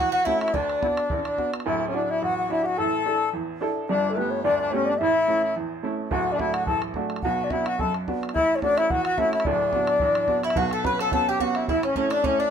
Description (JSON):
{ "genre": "celtic folk, Celtic reel", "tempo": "216 BPM", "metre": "4/4", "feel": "swing 54% on 8ths", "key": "D major", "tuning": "A4 = 436 Hz", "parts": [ { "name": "baroque flute", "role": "melody", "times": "0.0-12.5 s", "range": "A4 to B5", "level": "-24 LUFS", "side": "left 2 dB", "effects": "none" }, { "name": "Irish bouzouki", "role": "second line", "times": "0.0-1.5, 10.4-12.5 s", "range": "C#4 to B4", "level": "-30 LUFS", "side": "right 6 dB", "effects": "none" }, { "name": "accordion", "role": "second line", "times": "0.0-12.5 s", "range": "A3 to B4", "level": "-29 LUFS", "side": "left 4 dB", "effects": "none" }, { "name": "clear upright piano", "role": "accompaniment", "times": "0.0-12.5 s", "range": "D1 to A4", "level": "-27 LUFS", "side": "right 4 dB", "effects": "none" }, { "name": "bodhran", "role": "percussion", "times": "0.3-1.7, 6.1-12.3 s", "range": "none", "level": "-33 LUFS", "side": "right 2 dB", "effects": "none" } ], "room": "moderate studio reverb, RT60 0.7 s", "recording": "minimal, uncompressed stereo recording", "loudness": "-21 LUFS", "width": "side -7 dB against mid", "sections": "0.0-1.7 A section; 1.7-10.6 A section; 10.6-12.5 B section", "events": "none", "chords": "0.0 A6; 0.5 D6; 1.7 Dadd9; 2.8 Asus4; 3.9 Gadd9; 5.0 A; 6.1 D; 7.2 Bm; 8.3 A6; 9.5 D6; 10.6 Bsus2; 11.7 A" }